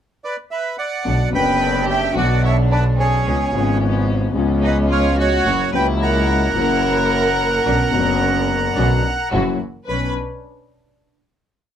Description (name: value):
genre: tango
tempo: 109 BPM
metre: 4/4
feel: rubato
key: B harmonic minor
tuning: A4 = 440 Hz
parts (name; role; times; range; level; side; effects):
- bandoneon; melody; 0.2-10.1 s; G#4 to B5; -20 LUFS; right 2 dB; none
- dark concert grand piano; accompaniment; 1.0-10.1 s; F#1 to B4; -22 LUFS; left 4 dB; none
- warm studio string section; stabs; 1.1-10.1 s; E#3 to B4; -26 LUFS; equal; none
- clear double bass; bass; 1.1-10.1 s; F#1 to C#2; -20 LUFS; right 1 dB; none
- rich chamber violin section; second line; 1.3-10.1 s; C#4 to B4; -24 LUFS; right 1 dB; none
room: moderate small room reverb, RT60 0.5 s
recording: band playing live in one room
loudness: -16 LUFS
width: side -9 dB against mid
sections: 0.0-1.1 pickup bar; 1.1-9.9 A section; 9.9-11.8 final chord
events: none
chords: 0.0 Bm; 3.3 C#7; 5.5 F#7; 7.7 Bmadd9; 9.3 F#7; 9.9 Bmadd9